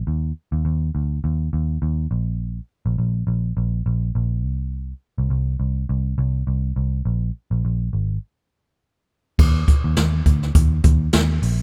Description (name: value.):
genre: piano-driven pop.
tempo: 103 BPM.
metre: 4/4.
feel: swing 56% on 16ths.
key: unclear.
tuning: A4 = 440 Hz.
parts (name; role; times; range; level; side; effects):
vintage muted picked electric bass; bass; 0.1-11.6 s; Ab1 to Eb2; -23 LUFS; equal; none.
jazz brush drum kit; drums; 9.4-11.6 s; crash cymbal, hi-hat, kick drum, snare drum; -19 LUFS; equal; none.
room: little or no reverb.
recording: rough home demo mix.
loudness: -21 LUFS.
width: mono.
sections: 0.0-9.4 A section; 9.4-11.6 B section.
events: break 8.2-9.4.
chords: none.